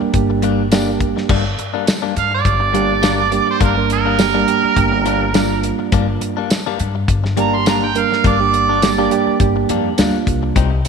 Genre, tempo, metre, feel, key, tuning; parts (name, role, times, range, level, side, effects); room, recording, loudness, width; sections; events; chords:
straight-eighth soul blues; 104 BPM; 4/4; swing 55% on 16ths; G minor; A4 = 440 Hz
reed electric piano; accompaniment; 0.0-10.6 s; G3 to Bb4; -19 LUFS; right 8 dB
direct-recorded clean electric guitar; stabs; 0.0-10.9 s; G2 to Eb4; -22 LUFS; left 12 dB; spring reverb, tape echo
upright bass; bass; 0.0-10.8 s; G1 to G2; -21 LUFS; left 2 dB
damped 70s drum kit; drums; 0.1-10.9 s; crash cymbal, hi-hat, kick drum, snare drum, tambourine; -18 LUFS; left 2 dB
mellow harmonica; second line; 2.2-9.4 s; Bb4 to C6; -17 LUFS; right 6 dB; overdrive
moderate echo chamber reverb, RT60 1.4 s, studio reverb; 1960s-style stereo with parts hard left and right; -14 LUFS; side -6 dB against mid
0.0-1.3 A section; 1.3-10.9 B section
harmonica solo 1.3-10.9
0.0 Gm